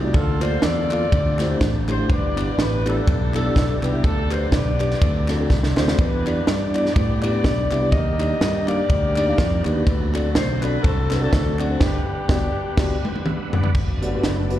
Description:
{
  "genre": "uptempo gospel",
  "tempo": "124 BPM",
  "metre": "4/4",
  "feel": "swing 56% on 8ths",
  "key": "G major",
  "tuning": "A4 = 441 Hz",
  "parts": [
    { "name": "warm saxophone section", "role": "melody", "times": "0.0-13.2 s", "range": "B3 to Eb5", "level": "-26 LUFS", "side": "left 2 dB", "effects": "slapback echo" },
    { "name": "mellow tine electric piano", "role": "accompaniment", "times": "0.0-14.6 s", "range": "G2 to F5", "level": "-26 LUFS", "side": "left 2 dB", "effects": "slapback echo" },
    { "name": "overdriven tonewheel organ", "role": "sustained chords", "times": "0.0-14.6 s", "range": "D3 to G5", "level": "-32 LUFS", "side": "right 4 dB", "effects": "slow rotary speaker, chorus vibrato" },
    { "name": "fingered electric bass", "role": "bass", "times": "0.0-14.6 s", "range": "F#1 to A2", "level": "-23 LUFS", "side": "equal", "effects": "none" },
    { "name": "crisp fusion drum kit", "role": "drums", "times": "0.1-14.6 s", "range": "crash cymbal, hi-hat, kick drum, ride cymbal, snare drum, toms", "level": "-22 LUFS", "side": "equal", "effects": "none" },
    { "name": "group handclap", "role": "percussion", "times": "0.4-11.7 s", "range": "none", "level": "-39 LUFS", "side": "left 3 dB", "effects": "slapback echo" },
    { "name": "warm studio string section", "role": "sustained chords", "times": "13.7-14.6 s", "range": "D4 to D5", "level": "-34 LUFS", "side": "left 1 dB", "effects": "none" }
  ],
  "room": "little or no reverb",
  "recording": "live gig heard through the venue's PA, recital hall reverb",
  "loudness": "-18 LUFS",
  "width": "side -12 dB against mid",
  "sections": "0.0-13.7 A section",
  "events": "drum fill 5.5-6.0, 12.8-13.7; band accent 11.8-13.7; tine electric piano fill 12.8-13.7; tonewheel organ fill 12.8-13.7",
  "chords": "0.1 Bbmaj7/D; 1.1 D9sus4; 2.1 G6; 4.0 G/D; 5.0 D7; 6.0 Em7; 7.9 Ebmaj7; 9.9 D7; 11.8 Gmaj7"
}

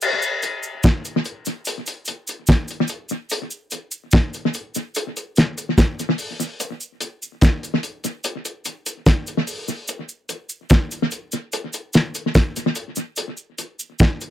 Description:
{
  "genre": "reggae",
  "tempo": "73 BPM",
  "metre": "4/4",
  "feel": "straight",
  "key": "none",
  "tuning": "none",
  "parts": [
    { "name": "cloth-damped thuddy drum kit", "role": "drums", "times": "0.0-14.3 s", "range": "crash cymbal, hi-hat, kick drum, snare drum", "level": "-18 LUFS", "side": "equal", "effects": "tape echo" },
    { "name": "cabasa", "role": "percussion", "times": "0.0-14.3 s", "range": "none", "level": "-30 LUFS", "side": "right 1 dB", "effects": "none" }
  ],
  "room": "light reverb",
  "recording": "dry, close 1970s-style studio recording",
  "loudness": "-20 LUFS",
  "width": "side -13 dB against mid",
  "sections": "0.0-14.3 A section",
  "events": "none",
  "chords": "none"
}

